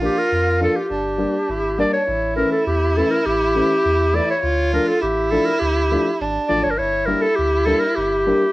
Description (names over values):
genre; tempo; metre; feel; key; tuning
klezmer; 102 BPM; 2/4; straight; G dorian sharp4; A4 = 440 Hz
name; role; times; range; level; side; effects
breathy clarinet; melody; 0.0-8.5 s; G4 to D5; -19 LUFS; left 1 dB; none
warm violin; second line; 0.0-8.5 s; D4 to F4; -23 LUFS; right 3 dB; cassette tape
dark upright piano; accompaniment; 0.0-8.4 s; E3 to E4; -23 LUFS; left 2 dB; cassette tape
warm sub bass; bass; 0.0-8.3 s; G1 to F2; -24 LUFS; equal; none
room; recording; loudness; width
moderate spring reverb, RT60 1.6 s, studio reverb; home recording on cassette; -16 LUFS; side -18 dB against mid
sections
0.0-2.1 A section; 2.1-8.5 B section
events
none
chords
0.0 Bb; 0.9 Gm; 2.1 A; 4.4 Dm; 6.8 Gm